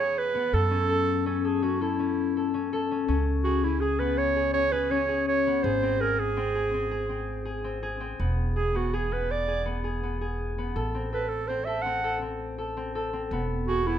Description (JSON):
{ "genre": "contemporary instrumental, chamber music in an uneven meter", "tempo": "164 BPM", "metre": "7/4", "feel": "straight", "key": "unclear", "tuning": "A4 = 440 Hz", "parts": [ { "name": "mellow clarinet", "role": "melody", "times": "0.0-14.0 s", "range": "E4 to F#5", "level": "-27 LUFS", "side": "right 4 dB", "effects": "none" }, { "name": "concert harp", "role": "arpeggios", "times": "0.0-14.0 s", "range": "B3 to A4", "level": "-29 LUFS", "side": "left 6 dB", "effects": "none" }, { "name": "upright bass", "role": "bass", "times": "0.0-14.0 s", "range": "E1 to F#2", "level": "-31 LUFS", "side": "right 1 dB", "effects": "none" } ], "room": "light reverb", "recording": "close, detailed microphones", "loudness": "-25 LUFS", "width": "side -9 dB against mid", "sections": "0.0-14.0 A section", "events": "none", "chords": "0.0 E; 0.5 F#m; 3.1 C#5; 5.6 G#; 8.2 E; 10.8 Am; 13.3 E" }